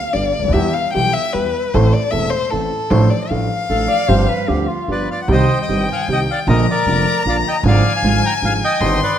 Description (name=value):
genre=tango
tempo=153 BPM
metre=3/4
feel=rubato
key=C minor from 5.3 s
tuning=A4 = 440 Hz
part: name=warm violin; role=second line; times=0.0-9.2 s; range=A4 to C6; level=-20 LUFS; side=left 5 dB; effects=none
part: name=warm concert grand piano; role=accompaniment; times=0.1-9.0 s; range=E1 to A4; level=-19 LUFS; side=right 1 dB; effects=none
part: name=upright bass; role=bass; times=0.1-9.0 s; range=E1 to E2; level=-19 LUFS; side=right 2 dB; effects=none
part: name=clear clarinet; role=second line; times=3.7-5.3 s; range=F4 to D5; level=-24 LUFS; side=right 6 dB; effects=none
part: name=bandoneon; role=melody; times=4.9-9.2 s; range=Bb4 to Bb5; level=-19 LUFS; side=left 1 dB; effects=none
room=moderate recital hall reverb, RT60 1.6 s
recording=none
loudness=-14 LUFS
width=side -9 dB against mid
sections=0.0-5.3 A section; 5.3-9.2 B section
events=violin solo 0.0-5.3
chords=0.0 G; 0.5 Em; 1.7 Am; 2.9 Dm/A; 4.1 G7sus4; 4.9 G7; 5.3 Cm; 6.5 Bb; 7.6 Ddim/Ab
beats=0.15 | 0.55 0.95 1.35 | 1.74 2.13 2.52 | 2.91 3.30 3.70 | 4.09 4.48 4.88 | 5.29 5.69 6.08 | 6.47 6.86 7.25 | 7.64 8.03 8.42 | 8.81